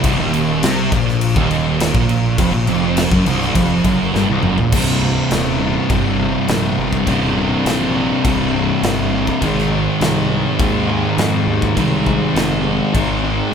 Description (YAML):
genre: stoner and doom metal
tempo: 102 BPM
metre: 4/4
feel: straight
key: C minor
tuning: A4 = 438 Hz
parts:
  - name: fuzz guitar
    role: riff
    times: 0.0-13.5 s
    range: C2 to Ab3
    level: -22 LUFS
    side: left 2 dB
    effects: distortion
  - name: thick fuzz guitar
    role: riff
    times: 0.0-13.5 s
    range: C2 to Ab3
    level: -21 LUFS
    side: left 8 dB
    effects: distortion
  - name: thick fuzz guitar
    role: riff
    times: 0.0-13.5 s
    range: C2 to Ab3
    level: -18 LUFS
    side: right 7 dB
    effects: distortion
  - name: fuzz fingered electric bass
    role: bass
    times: 0.0-13.4 s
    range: C1 to F2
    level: -23 LUFS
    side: left 1 dB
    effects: overdrive, tube saturation
  - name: big rock drum kit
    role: drums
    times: 0.0-13.1 s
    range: crash cymbal, kick drum, snare drum, toms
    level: -21 LUFS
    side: left 1 dB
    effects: none
room: light reverb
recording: band playing live in one room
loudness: -14 LUFS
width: side -7 dB against mid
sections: 0.0-4.7 A section; 4.7-13.5 B section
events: drum fill 4.1-4.7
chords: 0.0 Cm; 9.4 Ab